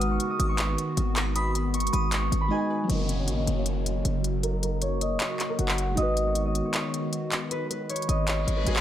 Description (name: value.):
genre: hip hop, trap.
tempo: 156 BPM.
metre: 4/4.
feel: half-time.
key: F# major.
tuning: A4 = 440 Hz.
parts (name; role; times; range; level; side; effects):
concert harp; melody; 0.0-8.8 s; F#4 to D#6; -31 LUFS; equal; low-pass filter, digital delay.
delicate synth tine bell; second line; 0.0-2.1 s; B5 to E#6; -38 LUFS; equal; chorus, phaser, digital delay.
glassy digital keys; accompaniment; 0.0-8.8 s; F#3 to F#5; -34 LUFS; equal; chorus, low-pass filter.
hollow soft pad; sustained chords; 0.0-8.8 s; C#3 to F#4; -33 LUFS; equal; ensemble chorus, low-pass filter.
hard-hitting 808-style bass; bass; 0.0-8.8 s; F#1 to G#1; -27 LUFS; equal; none.
trap drum kit; drums; 0.0-8.8 s; handclaps, hi-hat; -30 LUFS; left 1 dB; none.
downlifter and reverse cymbal; sound effects; 2.9-8.8 s; none; -37 LUFS; left 2 dB; none.
room: light reverb, digital ambience.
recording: none.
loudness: -24 LUFS.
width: side -11 dB against mid.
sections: 0.0-2.9 A section; 2.9-8.8 B section.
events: drums muted 2.5-2.9; filter sweep 2.9-8.8; reverse cymbal 8.4-8.8.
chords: 0.0 G#m7; 2.9 F#maj7; 6.0 G#m7.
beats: 0.20 0.59 0.97 | 1.36 1.74 2.13 2.51 | 2.90 3.28 3.66 4.05 | 4.43 4.82 5.20 5.59 | 5.97 6.36 6.74 7.13 | 7.51 7.89 8.28 8.66.